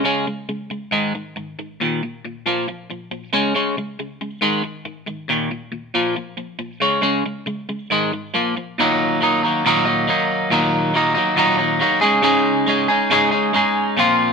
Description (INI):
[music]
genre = rock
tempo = 138 BPM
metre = 4/4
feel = straight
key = Eb minor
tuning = A4 = 440 Hz
[part]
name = biting overdriven guitar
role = solo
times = 0.0-14.3 s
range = Eb2 to Ab4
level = -17 LUFS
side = equal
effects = none
[sound]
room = moderate stone room reverb, RT60 1.1 s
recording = band playing live in one room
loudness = -17 LUFS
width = side -5 dB against mid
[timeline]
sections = 0.0-8.8 A section; 8.8-14.3 B section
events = none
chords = 0.0 Db5; 0.9 Ab5; 1.8 Eb5; 2.5 Bb5; 3.3 Db5; 4.4 Ab5; 5.3 Eb5; 5.9 Bb5; 6.8 Db5; 7.9 Ab5; 8.3 Bb5; 8.8 Ebm; 12.0 Dbsus2